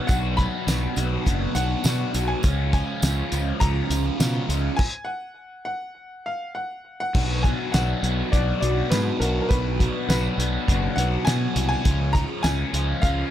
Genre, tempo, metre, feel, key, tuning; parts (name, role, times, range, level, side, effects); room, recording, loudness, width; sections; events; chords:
indie rock; 102 BPM; 4/4; straight; A4 = 441 Hz
crunchy overdriven guitar; riff; 0.0-13.3 s; B2 to F#4; -26 LUFS; equal; phaser
clear upright piano; melody; 0.1-13.3 s; A#4 to B5; -30 LUFS; left 1 dB
fuzz fingered electric bass; bass; 0.1-13.2 s; F#1 to B2; -25 LUFS; equal; overdrive
cloth-damped thuddy drum kit; drums; 0.1-13.2 s; crash cymbal, hi-hat, kick drum, snare drum, tambourine; -23 LUFS; equal
tambourine; percussion; 0.1-4.6 s; -38 LUFS; right 6 dB
little or no reverb; -21 LUFS; side -11 dB against mid
0.0-7.1 A section; 7.1-13.3 A section
stop 4.8-7.1
0.0 Bm; 2.4 C#; 4.8 N.C.; 7.1 Bm; 11.9 C#